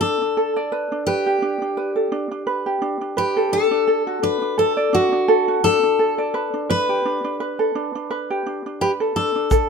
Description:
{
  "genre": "acoustic pop",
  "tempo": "85 BPM",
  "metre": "4/4",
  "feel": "swing 55% on 16ths",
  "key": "unclear",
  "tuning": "A4 = 441 Hz",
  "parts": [
    { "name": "picked steel-string acoustic guitar", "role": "melody", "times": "0.0-9.7 s", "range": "F#4 to B4", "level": "-21 LUFS", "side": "left 3 dB", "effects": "none" },
    { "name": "ukulele", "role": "accompaniment", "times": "0.0-9.7 s", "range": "D4 to D5", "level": "-22 LUFS", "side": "right 3 dB", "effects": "none" },
    { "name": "shaker and kick drum", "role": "drums", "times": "9.5-9.7 s", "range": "none", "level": "-18 LUFS", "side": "left 1 dB", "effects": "none" }
  ],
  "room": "light reverb",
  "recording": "minimal, uncompressed stereo recording",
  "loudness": "-18 LUFS",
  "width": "side -5 dB against mid",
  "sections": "0.0-9.7 A section",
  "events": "none",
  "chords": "0.0 D5; 0.7 Gadd9; 3.9 D; 6.3 Gadd9"
}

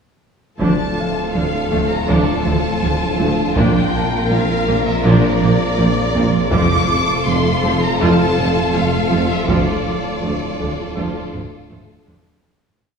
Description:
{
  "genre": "cinematic, hybrid orchestral and electronic film score",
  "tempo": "81 BPM",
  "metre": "4/4",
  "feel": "straight",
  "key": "D minor",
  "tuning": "A4 = 437 Hz",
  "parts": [
    { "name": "warm symphonic violin section", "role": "melody", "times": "0.6-11.7 s", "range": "D5 to D6", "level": "-23 LUFS", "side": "left 2 dB", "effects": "none" },
    { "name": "warm symphonic violin section", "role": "second line", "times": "0.6-12.2 s", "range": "F4 to Bb4", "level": "-23 LUFS", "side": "left 3 dB", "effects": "none" },
    { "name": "warm studio viola section", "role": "accompaniment", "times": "0.6-12.2 s", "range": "F3 to F4", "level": "-21 LUFS", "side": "right 1 dB", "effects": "none" },
    { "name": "mellow French horn section", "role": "sustained chords", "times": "0.6-12.1 s", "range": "A3 to F4", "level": "-27 LUFS", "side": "left 1 dB", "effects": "none" },
    { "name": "warm trombone section", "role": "sustained chords", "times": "0.6-12.1 s", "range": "F2 to F3", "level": "-27 LUFS", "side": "right 5 dB", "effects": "none" },
    { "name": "rich symphonic cello section", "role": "bass", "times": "0.6-12.2 s", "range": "D2 to D3", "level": "-25 LUFS", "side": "right 2 dB", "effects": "none" },
    { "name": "rich symphonic double bass section", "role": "bass", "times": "0.6-12.2 s", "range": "F1 to D2", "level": "-24 LUFS", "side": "right 3 dB", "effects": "none" },
    { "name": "swelling detuned saw bass", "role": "bass", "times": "0.6-12.4 s", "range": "D1 to Bb1", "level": "-25 LUFS", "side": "equal", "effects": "none" },
    { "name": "warm tuba", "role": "bass", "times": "0.6-12.2 s", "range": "F1 to D2", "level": "-24 LUFS", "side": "right 2 dB", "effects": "none" },
    { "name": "taiko ensemble", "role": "drums", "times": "0.6-12.4 s", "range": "none", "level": "-26 LUFS", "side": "equal", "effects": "none" },
    { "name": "clear grand piano", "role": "texture", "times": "1.0-12.5 s", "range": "Bb4 to A5", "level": "-34 LUFS", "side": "left 1 dB", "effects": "none" }
  ],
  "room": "wet scoring stage reverb, RT60 1.7 s",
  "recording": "heard from further back in the room, small room reverb",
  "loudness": "-14 LUFS",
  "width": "side -6 dB against mid",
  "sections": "0.6-12.5 theme",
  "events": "fade-out 9.5-12.5; drum fill 11.3-12.5",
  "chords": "0.6 Dm; 3.6 Bb; 6.5 F; 9.5 Dm"
}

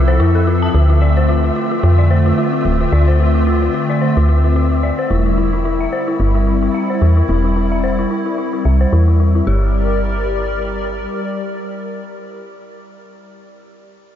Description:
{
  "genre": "IDM",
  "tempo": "110 BPM",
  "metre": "4/4",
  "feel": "swing 56% on 16ths",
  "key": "G dorian",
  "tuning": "A4 = 440 Hz",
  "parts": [
    { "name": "hollow soft pad", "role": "sustained chords", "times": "0.0-12.8 s", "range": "D3 to D5", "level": "-19 LUFS", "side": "left 1 dB", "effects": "ensemble chorus" },
    { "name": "dark detuned synth bell", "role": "arpeggios", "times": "0.0-9.7 s", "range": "E4 to A5", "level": "-22 LUFS", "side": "left 5 dB", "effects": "chorus, vintage 12-bit sampler grit, low-pass filter, dub echo" },
    { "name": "woody FM bass", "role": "bass", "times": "0.0-11.1 s", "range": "D1 to F2", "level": "-14 LUFS", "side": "equal", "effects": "none" },
    { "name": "flickering grainy texture", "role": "texture", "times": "0.0-9.5 s", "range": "E5", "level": "-28 LUFS", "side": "right 3 dB", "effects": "built-in reverb" }
  ],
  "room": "light reverb, digital ambience",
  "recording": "dark, warm production, nothing above 7.5 kHz",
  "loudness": "-13 LUFS",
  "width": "side -10 dB against mid",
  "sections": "0.0-9.5 A section; 9.5-13.8 B section",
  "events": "filter sweep on synth bell 0.0-9.5",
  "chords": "0.0 Fmaj7; 0.7 Dm7; 5.1 C/E; 9.5 Gm"
}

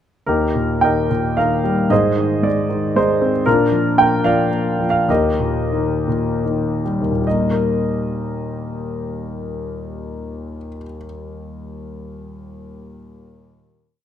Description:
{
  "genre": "classical, lyrical solo piano",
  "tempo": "70-121 BPM",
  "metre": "3/4",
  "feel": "rubato",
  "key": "Eb major",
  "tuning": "A4 = 439 Hz",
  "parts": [
    { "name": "warm concert grand piano", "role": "solo", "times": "0.3-14.0 s", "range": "Eb2 to G5", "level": "-17 LUFS", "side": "equal", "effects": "none" }
  ],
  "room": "moderate recital hall reverb, RT60 1.8 s",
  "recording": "close, detailed microphones",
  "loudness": "-16 LUFS",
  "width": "side -9 dB against mid",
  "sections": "0.3-7.3 A section; 7.3-12.1 final chord",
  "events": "slowing down 3.5-7.3",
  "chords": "0.3 Eb; 1.9 Ab; 3.5 Bb; 5.1 Eb"
}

